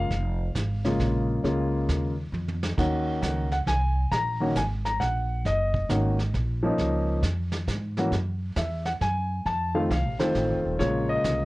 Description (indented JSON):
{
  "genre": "jazz piano trio",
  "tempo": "135 BPM",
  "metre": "3/4",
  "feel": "swing 65% on 8ths",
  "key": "Bb minor",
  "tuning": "A4 = 440 Hz",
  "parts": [
    { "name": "warm grand piano", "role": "melody", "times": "0.0-11.4 s", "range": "Db3 to Bb5", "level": "-26 LUFS", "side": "left 1 dB", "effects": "none" },
    { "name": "upright bass", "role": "bass", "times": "0.0-11.4 s", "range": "Eb1 to Ab2", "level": "-28 LUFS", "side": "equal", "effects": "transformer saturation" },
    { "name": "vintage brush drum kit", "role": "drums", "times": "0.1-11.4 s", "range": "brushed snare drum, crash cymbal, hi-hat, kick drum, snare drum, toms", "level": "-32 LUFS", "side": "right 2 dB", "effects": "none" }
  ],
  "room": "light reverb",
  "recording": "worn, warbling old tape, cassette tape, warbly pitch drift",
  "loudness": "-24 LUFS",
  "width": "side -20 dB against mid",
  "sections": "0.0-11.4 A section",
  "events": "drum fill 2.3-2.8",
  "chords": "0.0 Bbm7; 2.8 Ebm7; 6.8 Bbm7; 8.1 Eadd9; 9.5 F7; 10.8 Bbm7",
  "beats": "| 0.11 0.56 1.00 | 1.45 1.89 2.34 | 2.78 3.23 3.67 | 4.12 4.57 5.01 | 5.46 5.90 6.35 | 6.79 7.24 7.68 | 8.13 8.57 9.02 | 9.46 9.91 10.35 | 10.80 11.24"
}